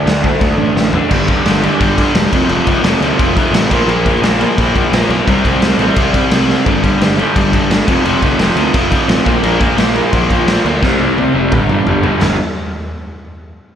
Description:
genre	punk rock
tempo	173 BPM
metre	4/4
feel	straight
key	unclear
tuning	A4 = 440 Hz
part	crunchy overdriven guitar	riff	0.0-12.4 s	F2 to D4	-16 LUFS	equal	none
part	raw garage guitar	riff	0.0-12.4 s	F2 to D4	-17 LUFS	equal	overdrive, slapback echo
part	fuzz picked electric bass	bass	0.1-12.4 s	E1 to D2	-19 LUFS	equal	overdrive
part	raw garage drum kit	drums	0.1-12.3 s	china cymbal, crash cymbal, kick drum, snare drum, toms	-15 LUFS	equal	none
room	moderate lush hall reverb, RT60 2.0 s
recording	big arena sound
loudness	-10 LUFS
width	side -9 dB against mid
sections	0.0-1.1 A section; 1.1-12.2 B section; 12.2-13.6 C section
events	drum fill 0.8-1.1, 6.5, 10.8-12.2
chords	0.0 D5; 1.1 G5; 2.3 F; 3.7 Bb5; 5.3 C5; 6.7 G5; 7.9 F5; 9.3 Bb5; 10.8 C5; 11.5 G5

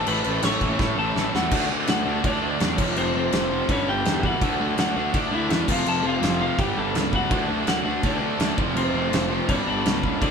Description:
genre	punk rock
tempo	166 BPM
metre	4/4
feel	straight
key	unclear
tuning	A4 = 440 Hz
part	lightly driven lead guitar	melody	0.0-10.3 s	C4 to C#6	-27 LUFS	left 2 dB	none
part	cranked stack guitar	riff	0.0-10.3 s	F2 to D4	-29 LUFS	right 8 dB	overdrive
part	thick fuzz guitar	riff	0.0-10.3 s	F2 to A4	-32 LUFS	equal	none
part	tight distorted guitar	riff	0.0-10.3 s	F2 to D4	-28 LUFS	left 6 dB	distortion
part	fuzz picked electric bass	bass	0.1-10.3 s	F1 to A2	-29 LUFS	equal	overdrive
part	loose indie drum kit	drums	0.1-10.3 s	crash cymbal, kick drum, snare drum	-25 LUFS	equal	none
room	light reverb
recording	band playing live in one room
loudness	-20 LUFS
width	side -6 dB against mid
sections	0.0-1.5 A section; 1.5-10.3 B section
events	drum fill 0.8-1.5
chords	0.0 A; 1.5 D; 2.8 F; 3.7 G; 4.4 D; 5.7 F; 6.6 G; 7.3 D; 8.6 F; 9.5 G

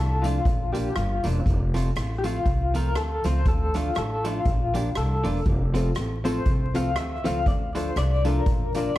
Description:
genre	ska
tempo	120 BPM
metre	4/4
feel	swing 58% on 8ths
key	F major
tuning	A4 = 438 Hz
part	electric guitar through a small old amp	melody	0.0-9.0 s	F4 to F5	-29 LUFS	left 3 dB	tremolo, analog delay
part	upright bass	bass	0.0-8.9 s	E1 to D2	-26 LUFS	equal	none
part	vintage hollow-body jazz guitar	accompaniment	0.2-8.9 s	F3 to F4	-32 LUFS	right 2 dB	analog delay
part	tambourine	percussion	0.2-8.8 s	none	-47 LUFS	right 4 dB	none
part	street-band drum kit	drums	0.3-9.0 s	hi-hat, kick drum, rim click	-27 LUFS	equal	none
part	clear upright piano	stabs	5.7-8.9 s	C4 to Bb4	-30 LUFS	left 3 dB	analog delay
room	light reverb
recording	dark, warm production, vinyl crackle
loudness	-22 LUFS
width	side -15 dB against mid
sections	0.0-9.0 A section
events	clean electric guitar solo 0.0-9.0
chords	0.5 Bb; 1.5 F; 3.5 Dm; 4.5 Bb; 5.5 F; 7.5 Dm; 8.5 Bb

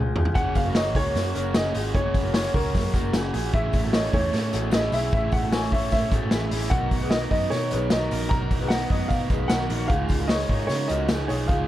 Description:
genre	jangly indie pop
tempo	151 BPM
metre	4/4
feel	straight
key	F# major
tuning	A4 = 441 Hz
part	electric guitar through a small old amp	arpeggios	0.0-11.7 s	C#4 to D#5	-31 LUFS	left 5 dB	none
part	vintage muted picked electric bass	bass	0.0-11.7 s	F#1 to C#3	-28 LUFS	equal	none
part	vintage drum kit	drums	0.2-11.6 s	hi-hat, kick drum, snare drum, toms	-25 LUFS	equal	none
part	raw garage guitar	accompaniment	0.3-11.7 s	B2 to A#4	-30 LUFS	right 6 dB	overdrive
part	dark upright piano	melody	0.4-11.7 s	A#4 to A#5	-28 LUFS	equal	none
part	tambourine	percussion	0.6-11.6 s	none	-47 LUFS	left 10 dB	none
room	light reverb, small room ambience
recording	dark, warm production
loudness	-21 LUFS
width	side -13 dB against mid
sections	0.0-11.7 A section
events	drum fill 0.0-0.4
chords	0.4 F#add9; 3.5 Amaj7; 6.7 Bmaj7; 9.9 C#add9

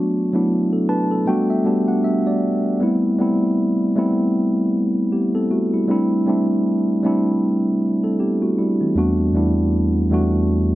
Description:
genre	R&B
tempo	78 BPM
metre	4/4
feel	swing 58% on 16ths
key	A dorian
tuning	A4 = 437 Hz
part	mellow tine electric piano	solo	0.0-10.8 s	E2 to A5	-16 LUFS	equal	none
room	light reverb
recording	dark, warm production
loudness	-16 LUFS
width	side -16 dB against mid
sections	0.0-2.8 A section; 2.8-10.8 B section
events	tine electric piano fill 0.5-2.8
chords	0.0 Bm7; 1.3 Gmaj9; 2.8 Am9; 5.9 C6

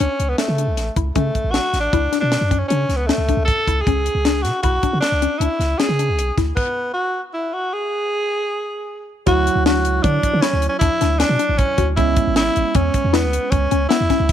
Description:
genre	progressive instrumental, band music in an uneven meter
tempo	155 BPM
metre	7/4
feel	straight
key	unclear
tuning	A4 = 440 Hz
part	raspy tenor saxophone	melody	0.0-14.3 s	A3 to A4	-20 LUFS	equal	none
part	woody wave-folded pluck	arpeggios	0.0-14.3 s	B3 to C#5	-24 LUFS	left 13 dB	chorus
part	punchy sub bass	bass	0.0-14.3 s	G#1 to D3	-20 LUFS	equal	none
part	tight funk drum kit	drums	0.0-14.3 s	crash cymbal, hi-hat, kick drum, snare drum	-22 LUFS	equal	none
part	barky tine electric piano	accompaniment	9.3-14.3 s	F#3 to C#5	-25 LUFS	right 16 dB	none
room	light reverb, studio ambience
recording	1960s-style stereo with parts hard left and right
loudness	-16 LUFS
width	side -10 dB against mid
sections	0.0-9.3 A section; 9.3-14.3 B section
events	stop 6.6-9.3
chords	0.0 Dmaj7(no3); 3.9 E7 (rootless); 9.3 Dmaj7; 12.0 C#m7/G#

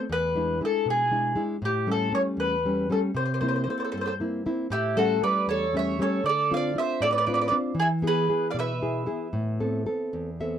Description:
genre	italian folk, Italian serenade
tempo	78 BPM (dotted quarters)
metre	6/8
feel	rubato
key	unclear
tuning	A4 = 438 Hz
part	nylon-string guitar	accompaniment	0.0-10.6 s	E2 to E5	-27 LUFS	left 1 dB	none
part	mandolin	melody	0.1-10.4 s	G4 to F5	-26 LUFS	equal	none
part	mandolin	second line	3.7-10.4 s	E4 to D5	-31 LUFS	right 6 dB	none
room	light reverb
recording	dry, close 1970s-style studio recording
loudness	-23 LUFS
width	side -9 dB against mid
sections	0.0-10.6 A section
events	nylon-string guitar fill 10.1-10.6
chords	0.1 E7; 1.6 A7; 3.2 C7; 4.7 A7; 6.3 Dm7; 7.8 E; 9.3 Amadd9

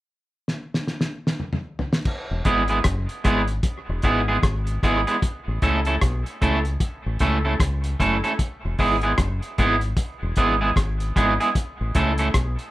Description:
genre	roots reggae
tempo	76 BPM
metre	4/4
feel	swing 61% on 16ths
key	E major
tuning	A4 = 440 Hz
part	cloth-damped thuddy drum kit	drums	0.5-12.7 s	crash cymbal, hi-hat, kick drum, rim click, snare drum, toms	-24 LUFS	equal	analog delay
part	deep dub fingered electric bass	bass	2.3-12.6 s	E1 to C#2	-24 LUFS	equal	none
part	electric guitar at the edge of break-up	accompaniment	2.5-12.3 s	G#3 to A4	-22 LUFS	right 2 dB	dub echo
room	light reverb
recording	rough home demo mix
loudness	-20 LUFS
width	side -16 dB against mid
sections	0.0-2.1 A section; 2.1-12.7 B section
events	drum fill 0.5-2.1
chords	0.0 N.C.; 2.1 E; 5.2 A; 8.4 E; 11.6 A

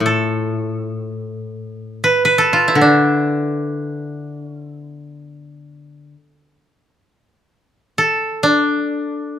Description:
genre	japanese traditional, Japanese chamber music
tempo	free time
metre	none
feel	none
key	D kumoi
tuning	A4 = 441 Hz
part	koto	melody	0.0-9.4 s	D4 to B4	-16 LUFS	right 1 dB	none
part	koto	accompaniment	0.0-6.1 s	A2 to D3	-21 LUFS	left 2 dB	none
room	light reverb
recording	close, detailed microphones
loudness	-15 LUFS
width	side -10 dB against mid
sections	0.0-9.4 A section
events	none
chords	none

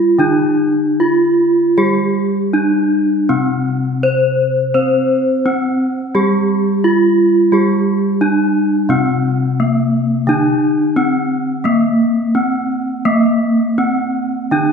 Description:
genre	gamelan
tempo	74-87 BPM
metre	4/4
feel	straight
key	C slendro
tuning	A4 = 440 Hz
part	gamelan-type bronze metallophone	melody	0.0-14.7 s	Bb3-40c to C5	-14 LUFS	equal	none
part	gamelan-type bronze metallophone	accompaniment	0.0-14.7 s	C3 to C4	-18 LUFS	right 1 dB	none
room	wet recital hall reverb, RT60 1.6 s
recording	recorded in a church or concert hall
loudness	-12 LUFS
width	side -6 dB against mid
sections	0.0-6.2 A section; 6.2-14.7 B section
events	none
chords	none

